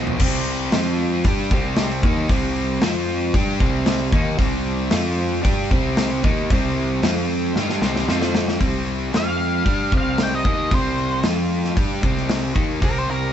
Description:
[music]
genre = blues rock power trio and southern rock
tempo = 114 BPM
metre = 4/4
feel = straight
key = C minor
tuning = A4 = 441 Hz
[part]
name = overdriven electric guitar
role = riff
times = 0.0-13.3 s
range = Bb2 to G4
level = -22 LUFS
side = equal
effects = none
[part]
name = fuzz picked electric bass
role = bass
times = 0.0-13.3 s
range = B1 to G2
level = -25 LUFS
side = right 1 dB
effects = overdrive
[part]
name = big rock drum kit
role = drums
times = 0.1-12.9 s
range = crash cymbal, hi-hat, kick drum, snare drum, toms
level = -22 LUFS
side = equal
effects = none
[part]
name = octave-fuzz lead guitar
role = melody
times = 9.2-13.3 s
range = Bb4 to G5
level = -24 LUFS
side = left 1 dB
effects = distortion
[sound]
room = light reverb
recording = band playing live in one room, nothing above 8.0 kHz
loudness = -18 LUFS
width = side -10 dB against mid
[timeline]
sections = 0.2-8.6 A section; 8.6-13.3 B section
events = drum fill 0.0, 7.6-8.6; lead electric guitar solo 8.6-13.3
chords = 0.2 C5; 0.7 F5; 1.2 Cm; 2.8 F5; 3.4 Cm; 4.9 F5; 5.5 Cm; 7.0 F5; 7.6 C5; 8.1 F5; 8.6 C5; 9.1 F5; 9.7 Cm; 11.2 F5; 11.8 Cm

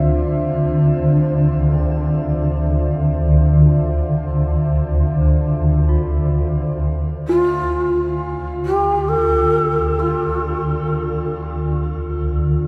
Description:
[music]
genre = dark ambient drone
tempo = free time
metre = none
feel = none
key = D minor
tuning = A4 = 444 Hz
[part]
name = deep dark ambient pad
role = sustained chords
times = 0.0-12.7 s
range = F4 to E5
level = -30 LUFS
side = equal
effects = chorus, built-in reverb, shimmer reverb
[part]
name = swarming drone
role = drone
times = 0.0-12.7 s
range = D2 to D3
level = -19 LUFS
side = equal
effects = built-in reverb
[part]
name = quartz singing bowl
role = texture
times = 0.0-12.7 s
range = C4 to F4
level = -28 LUFS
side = equal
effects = shimmer reverb
[part]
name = gamelan-type bronze metallophone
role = arpeggios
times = 1.7-12.7 s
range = D3 to F4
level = -36 LUFS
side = equal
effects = shimmer reverb, tape echo
[part]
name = breathy mellow long shakuhachi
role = melody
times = 7.3-10.7 s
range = F4 to A4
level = -22 LUFS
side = equal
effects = shimmer reverb, tape echo
[sound]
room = wet huge ambient reverb, RT60 7.3 s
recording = none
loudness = -18 LUFS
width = mono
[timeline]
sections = 0.0-7.3 A section; 7.3-12.7 B section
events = fade-out on ambient pad 0.0-7.3; fade-out on bronze metallophone 0.0-7.3; filter sweep on synth drone 7.3-12.7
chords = 0.0 Dmadd9

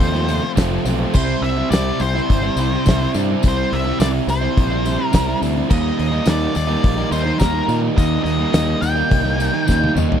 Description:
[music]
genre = classic rock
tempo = 105 BPM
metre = 4/4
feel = straight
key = unclear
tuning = A4 = 440 Hz
[part]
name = octave-fuzz lead guitar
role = melody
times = 0.0-9.9 s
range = Bb4 to G5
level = -24 LUFS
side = left 1 dB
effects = distortion, slapback echo
[part]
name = biting overdriven guitar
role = riff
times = 0.0-10.2 s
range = F2 to E4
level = -22 LUFS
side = right 14 dB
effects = none
[part]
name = sludgy distorted guitar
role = riff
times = 0.0-10.2 s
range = F2 to F4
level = -24 LUFS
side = left 14 dB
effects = overdrive
[part]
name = growling fingered electric bass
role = bass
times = 0.0-10.1 s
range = F1 to Bb2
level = -21 LUFS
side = equal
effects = overdrive
[part]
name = tambourine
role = percussion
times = 0.0-10.1 s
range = none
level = -35 LUFS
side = left 10 dB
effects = none
[part]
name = damped 70s drum kit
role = drums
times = 0.1-10.2 s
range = crash cymbal, hi-hat, kick drum, snare drum, toms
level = -17 LUFS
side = equal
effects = none
[sound]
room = small room ambience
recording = dry, close 1970s-style studio recording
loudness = -15 LUFS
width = side -9 dB against mid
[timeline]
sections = 0.0-10.2 A section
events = drum fill 9.7-10.2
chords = 0.0 F; 1.1 C; 5.7 Eb

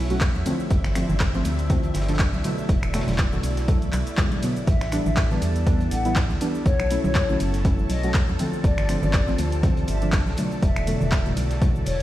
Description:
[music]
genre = deep house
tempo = 121 BPM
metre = 4/4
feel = swing 56% on 16ths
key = unclear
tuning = A4 = 439 Hz
[part]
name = airy breathy pad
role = sustained chords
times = 0.0-12.0 s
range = F3 to D5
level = -35 LUFS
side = equal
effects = chorus, sidechain pumping
[part]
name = deep mellow chord stab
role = stabs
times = 0.0-12.0 s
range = B2 to F#4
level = -27 LUFS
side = equal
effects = chorus, vintage 12-bit sampler grit, sidechain pumping, digital delay
[part]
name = organ-like FM bass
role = bass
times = 0.0-12.0 s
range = E1 to E2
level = -26 LUFS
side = equal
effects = sidechain pumping
[part]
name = soft string machine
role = texture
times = 0.0-12.0 s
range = E4 to A5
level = -37 LUFS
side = equal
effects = ensemble chorus, sidechain pumping
[part]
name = punchy analog drum machine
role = drums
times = 0.1-12.0 s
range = finger snaps, handclaps, hi-hat, ride cymbal, shaker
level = -32 LUFS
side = equal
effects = overdrive
[part]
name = crunchy breakbeat drum kit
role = drums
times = 0.2-12.0 s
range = hi-hat, snare drum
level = -41 LUFS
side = equal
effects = none
[part]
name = electronic kick drum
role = drums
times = 0.2-11.7 s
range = none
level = -23 LUFS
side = equal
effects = overdrive
[part]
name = congas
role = percussion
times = 0.3-11.7 s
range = none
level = -32 LUFS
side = right 2 dB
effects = none
[part]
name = mellow hollow silver concert flute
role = melody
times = 4.7-12.0 s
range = C#5 to F#5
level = -31 LUFS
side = left 4 dB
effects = ping-pong delay
[sound]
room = little or no reverb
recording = played on a big sound system in a bare room, stone room reverb, vinyl crackle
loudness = -20 LUFS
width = side -14 dB against mid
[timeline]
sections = 0.0-12.0 A section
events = none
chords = 0.5 G9sus4; 2.4 E9sus4; 4.7 A9sus4; 6.7 B9sus4; 8.4 G9sus4; 10.4 E9sus4

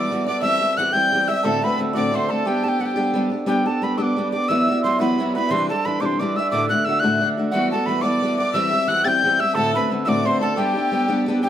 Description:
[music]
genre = celtic folk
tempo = 118 BPM (dotted quarters)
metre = 6/8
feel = straight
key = G major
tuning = A4 = 440 Hz
[part]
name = breathy mellow mid whistle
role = melody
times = 0.0-11.5 s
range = F#5 to A6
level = -22 LUFS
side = equal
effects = plate reverb
[part]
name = hammered dulcimer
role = second line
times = 0.0-11.5 s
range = F#4 to G5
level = -26 LUFS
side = right 4 dB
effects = none
[part]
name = rich fiddle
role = second line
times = 0.0-3.3, 7.5-11.5 s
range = F#4 to G5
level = -28 LUFS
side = left 3 dB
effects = none
[part]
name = fingerpicked steel-string acoustic guitar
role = accompaniment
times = 0.0-11.5 s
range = D2 to G4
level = -22 LUFS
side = left 1 dB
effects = none
[sound]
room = moderate studio reverb, RT60 0.7 s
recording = none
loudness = -18 LUFS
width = side -10 dB against mid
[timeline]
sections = 0.0-3.5 A section; 3.5-11.5 A section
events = none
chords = 0.4 C/E; 1.4 D7; 2.5 G; 4.5 Esus2; 5.5 Cadd9; 6.5 D; 7.5 Emadd9; 8.6 C/E; 9.6 D7; 10.6 G

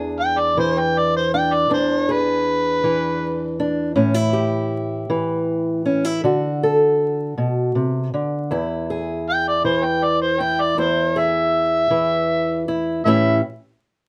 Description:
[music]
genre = acoustic country blues, solo or duo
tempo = 53 BPM (dotted quarters)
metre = 12/8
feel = straight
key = unclear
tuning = A4 = 440 Hz
[part]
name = fingerpicked old ladder-braced acoustic guitar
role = accompaniment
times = 0.0-13.4 s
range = E2 to A4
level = -22 LUFS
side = equal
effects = none
[part]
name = overdriven harmonica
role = melody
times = 0.2-13.4 s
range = B4 to G5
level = -21 LUFS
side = equal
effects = none
[sound]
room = light reverb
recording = vinyl crackle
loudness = -20 LUFS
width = mono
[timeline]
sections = 0.0-13.1 A section; 13.1-14.1 B section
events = none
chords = 0.0 E7; 4.0 A7; 6.2 D7; 8.5 E; 13.1 A7

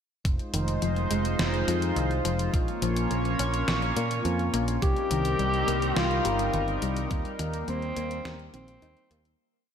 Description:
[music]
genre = synthwave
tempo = 105 BPM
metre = 4/4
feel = straight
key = F minor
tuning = A4 = 440 Hz
[part]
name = picked electric bass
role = bass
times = 0.2-9.3 s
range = F1 to Bb2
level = -30 LUFS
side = equal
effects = sidechain pumping
[part]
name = detuned 8-bit digital drum machine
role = drums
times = 0.2-9.4 s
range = hi-hat, snare drum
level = -33 LUFS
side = equal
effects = none
[part]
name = electronic kick drum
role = drums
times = 0.2-7.2 s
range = none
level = -27 LUFS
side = equal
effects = none
[part]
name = chorused pulse-width pad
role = sustained chords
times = 0.3-9.4 s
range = G3 to Db5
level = -30 LUFS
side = equal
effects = sidechain pumping
[part]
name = soft round pluck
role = arpeggios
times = 0.5-9.2 s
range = Eb3 to Eb4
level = -33 LUFS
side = left 4 dB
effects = chorus, diffuse ambient delay
[part]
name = mellow tenor saxophone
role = melody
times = 4.8-9.3 s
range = C4 to G4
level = -30 LUFS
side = left 1 dB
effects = ping-pong delay
[part]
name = soft synth bell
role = second line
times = 4.8-9.3 s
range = C4 to G4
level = -38 LUFS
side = left 4 dB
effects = chorus, diffuse ambient delay
[sound]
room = moderate lush hall reverb, RT60 2.3 s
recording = dreamy mix soaked in reverb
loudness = -24 LUFS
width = side -8 dB against mid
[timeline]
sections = 0.3-9.4 verse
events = fade-out 6.3-9.4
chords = 0.3 Fm7; 2.5 Bbm; 4.8 Cm7; 7.1 Eb

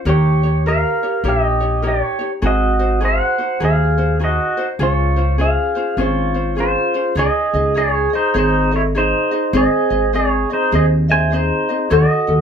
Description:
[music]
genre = Hawaiian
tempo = 101 BPM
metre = 4/4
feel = swing 63% on 8ths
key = Db major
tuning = A4 = 439 Hz
[part]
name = ukulele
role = accompaniment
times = 0.0-12.4 s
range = B#3 to D#5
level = -23 LUFS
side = left 3 dB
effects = none
[part]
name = pedal steel guitar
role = melody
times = 0.1-12.4 s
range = D#4 to G#5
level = -18 LUFS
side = right 1 dB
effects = none
[part]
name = upright bass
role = bass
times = 0.1-12.4 s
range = Ab1 to Eb2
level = -18 LUFS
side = equal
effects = none
[part]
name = vibraphone with soft mallets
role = second line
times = 6.6-12.4 s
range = Ab4 to E5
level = -22 LUFS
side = right 3 dB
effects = none
[sound]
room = light reverb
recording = band playing live in one room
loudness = -14 LUFS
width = side -7 dB against mid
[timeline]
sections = 0.0-7.2 A section; 7.2-12.4 B section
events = none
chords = 0.1 Eb7; 2.4 Ab7; 4.8 Dbmaj7; 7.2 C#sus2; 9.5 G#; 11.9 D#m7b5

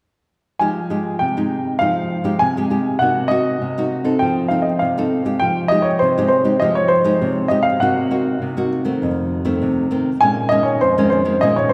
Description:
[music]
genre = samba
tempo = 100 BPM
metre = 4/4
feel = straight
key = F minor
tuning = A4 = 440 Hz
[part]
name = warm baby grand piano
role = melody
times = 0.6-11.7 s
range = C5 to Ab5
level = -20 LUFS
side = equal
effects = none
[part]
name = nylon-string guitar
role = accompaniment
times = 0.6-11.7 s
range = F2 to A4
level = -21 LUFS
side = equal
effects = none
[sound]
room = wet church reverb, RT60 3.3 s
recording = recorded in a church or concert hall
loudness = -18 LUFS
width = mono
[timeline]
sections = 0.6-5.4 A section; 5.4-11.7 B section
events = none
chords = 0.6 Fm9; 3.0 Cm7b5; 4.2 F7; 5.4 Fm9; 7.8 Cm7b5; 9.0 F7; 10.2 Bbm11

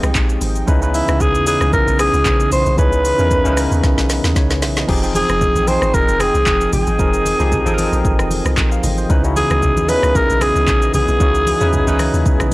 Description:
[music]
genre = amapiano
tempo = 114 BPM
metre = 4/4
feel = swing 55% on 16ths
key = unclear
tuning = A4 = 441 Hz
[part]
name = growling alto saxophone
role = melody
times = 0.0-12.5 s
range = Eb4 to C5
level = -18 LUFS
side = equal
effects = tape echo
[part]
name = barky tine electric piano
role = accompaniment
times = 0.0-12.5 s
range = Db3 to G5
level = -21 LUFS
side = equal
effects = fast stereo tremolo
[part]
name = warm analog pad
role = sustained chords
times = 0.0-12.5 s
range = Db3 to G5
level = -27 LUFS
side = equal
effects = lush chorus
[part]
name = deep log drum bass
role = bass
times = 0.0-12.5 s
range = F1 to Fb2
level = -19 LUFS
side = equal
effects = none
[part]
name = afro-pop drum kit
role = drums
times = 0.0-12.5 s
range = crash cymbal, handclaps, hi-hat, kick drum, rim click, shaker, snare drum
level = -20 LUFS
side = equal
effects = none
[part]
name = congas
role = percussion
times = 5.1-12.5 s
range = none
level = -26 LUFS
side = equal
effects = none
[sound]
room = digital ambience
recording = dry, gritty hardware recording, transformer saturation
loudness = -13 LUFS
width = side -20 dB against mid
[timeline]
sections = 0.0-12.5 A section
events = drum fill 3.8-4.9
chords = 0.0 Fm9; 0.7 Dbm9; 4.9 Fm9; 9.1 Dbm9

